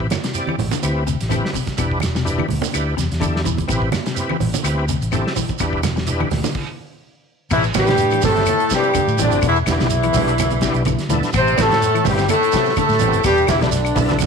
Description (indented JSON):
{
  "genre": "afrobeat",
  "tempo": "126 BPM",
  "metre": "4/4",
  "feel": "swing 55% on 16ths",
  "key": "A minor",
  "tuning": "A4 = 440 Hz",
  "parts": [
    { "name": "overdriven tonewheel organ", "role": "accompaniment", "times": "0.0-14.2 s", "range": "B3 to D5", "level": "-25 LUFS", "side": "equal", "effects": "slow rotary speaker, chorus vibrato" },
    { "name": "clean electric guitar", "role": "arpeggios", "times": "0.0-14.3 s", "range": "B2 to E3", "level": "-26 LUFS", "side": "left 10 dB", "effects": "none" },
    { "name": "fingered electric bass", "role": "bass", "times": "0.0-14.3 s", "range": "E1 to A2", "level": "-22 LUFS", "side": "equal", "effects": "tube saturation" },
    { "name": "warm soul drum kit", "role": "drums", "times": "0.0-14.3 s", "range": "crash cymbal, hi-hat, kick drum, snare drum", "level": "-27 LUFS", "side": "equal", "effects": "none" },
    { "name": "claves", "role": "percussion", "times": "0.1-14.3 s", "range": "none", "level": "-33 LUFS", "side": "left 15 dB", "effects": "none" },
    { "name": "congas", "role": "percussion", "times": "0.1-14.3 s", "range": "none", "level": "-25 LUFS", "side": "right 9 dB", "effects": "none" },
    { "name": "shekere", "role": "percussion", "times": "0.1-14.3 s", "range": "none", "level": "-28 LUFS", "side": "right 7 dB", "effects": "none" },
    { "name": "clear horn section", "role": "melody", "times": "7.5-14.3 s", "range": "D4 to C5", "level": "-19 LUFS", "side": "left 1 dB", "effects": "none" },
    { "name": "brilliant trombone section", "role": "second line", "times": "7.5-14.3 s", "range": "D2 to C3", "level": "-24 LUFS", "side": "left 10 dB", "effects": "none" },
    { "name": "clear tenor saxophone", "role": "second line", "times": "7.5-14.3 s", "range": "D3 to C4", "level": "-23 LUFS", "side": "right 10 dB", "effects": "none" }
  ],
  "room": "light reverb, small room ambience",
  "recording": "1960s-style stereo with parts hard left and right",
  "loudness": "-16 LUFS",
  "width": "side -6 dB against mid",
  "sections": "0.0-7.5 A section; 7.5-14.3 B section",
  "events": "stop 6.6-7.5",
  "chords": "0.0 Am9; 1.8 Em7; 3.7 Am9; 5.6 Em7; 7.5 Am9; 9.4 Em7; 11.3 Am9; 13.2 Em7",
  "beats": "0.35 0.83 1.31 | 1.79 2.26 2.74 3.22 | 3.70 4.17 4.65 5.13 | 5.61 6.09 6.56 7.04 | 7.52 8.00 8.47 8.95 | 9.43 9.91 10.38 10.86 | 11.34 11.82 12.29 12.77 | 13.25 13.73 14.21"
}